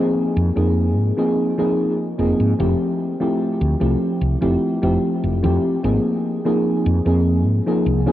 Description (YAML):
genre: vaporwave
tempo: 74 BPM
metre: 4/4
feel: straight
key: unclear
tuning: A4 = 439 Hz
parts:
  - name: mellow FM electric piano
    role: accompaniment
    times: 0.0-8.1 s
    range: F3 to Ab4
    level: -18 LUFS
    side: equal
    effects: wide subtle chorus, tape echo
  - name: woody fretless electric bass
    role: bass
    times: 0.4-8.1 s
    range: F1 to Ab2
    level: -19 LUFS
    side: equal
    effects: tube saturation
room: moderate huge ambient reverb, RT60 7.2 s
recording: worn, warbling old tape, cassette tape, warbly pitch drift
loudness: -17 LUFS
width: side -13 dB against mid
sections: 0.0-2.6 A section; 2.6-8.1 B section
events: none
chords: 0.0 Ab69; 2.6 Fmaj9; 5.8 Ab69